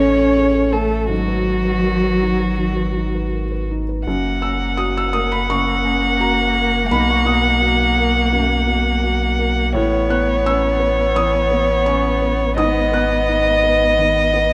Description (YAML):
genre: neoclassical piano and strings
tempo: 84 BPM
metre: 4/4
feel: rubato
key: unclear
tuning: A4 = 440 Hz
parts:
  - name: muted violin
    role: melody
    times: 0.0-14.5 s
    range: F#4 to F#5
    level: -21 LUFS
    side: equal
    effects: none
  - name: muted cello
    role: second line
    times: 0.0-14.5 s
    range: F#3 to C#4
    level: -24 LUFS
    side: equal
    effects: none
  - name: felt-muted upright piano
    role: accompaniment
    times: 0.0-14.5 s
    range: B1 to F#6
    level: -25 LUFS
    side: equal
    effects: none
  - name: pure sine sub bass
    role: bass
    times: 0.0-14.5 s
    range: F#1 to B1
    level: -25 LUFS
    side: equal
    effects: none
room: light reverb, small room ambience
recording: rough home demo mix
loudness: -17 LUFS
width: mono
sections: 0.0-4.1 A section; 4.1-14.5 B section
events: none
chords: 0.0 A; 1.1 G#m7; 4.1 F#; 6.9 Bmaj7; 9.7 Aadd9; 12.6 G#m7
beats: 0.37 | 1.10 1.85 2.59 3.33 | 4.06 4.78 5.49 6.20 | 6.91 7.62 8.33 9.04 | 9.74 10.45 11.16 11.87 | 12.58 13.28 13.99